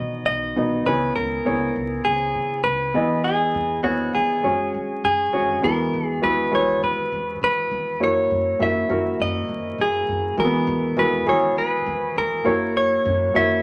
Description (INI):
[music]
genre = piano-driven pop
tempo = 101 BPM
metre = 4/4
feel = straight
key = unclear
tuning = A4 = 435 Hz
[part]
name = direct-recorded clean electric guitar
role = melody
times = 0.0-13.6 s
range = F#4 to E5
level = -24 LUFS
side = equal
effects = none
[part]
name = warm upright piano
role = accompaniment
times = 0.0-13.6 s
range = B2 to E5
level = -26 LUFS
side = equal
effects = none
[part]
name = upright bass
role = bass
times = 0.0-13.6 s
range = B1 to F#3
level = -35 LUFS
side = equal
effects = none
[sound]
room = wet studio ambience, RT60 0.5 s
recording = vinyl crackle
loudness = -22 LUFS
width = mono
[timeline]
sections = 0.0-5.6 A section; 5.6-13.6 B section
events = none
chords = 0.0 B; 0.9 C#m7; 3.0 Emaj7; 4.4 F#sus2; 5.6 Eadd9; 8.0 F#7; 10.4 Eadd9; 12.5 F#7